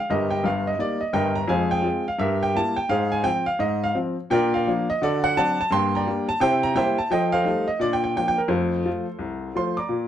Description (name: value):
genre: jazz, stride piano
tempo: 171 BPM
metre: 4/4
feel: swing 63% on 8ths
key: unclear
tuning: A4 = 442 Hz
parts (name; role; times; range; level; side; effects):
- clear upright piano; solo; 0.0-10.1 s; G1 to D6; -21 LUFS; equal; none
room: moderate club reverb, RT60 0.8 s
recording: dark, warm production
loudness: -20 LUFS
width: side -10 dB against mid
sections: 0.0-9.9 A section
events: none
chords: 0.1 Eb/G; 1.5 Fm; 2.2 Edim/G; 2.9 Fm/Ab; 4.3 Bb; 5.0 D7; 5.7 Gm; 6.4 C7; 7.1 F9; 7.8 Bb; 8.5 F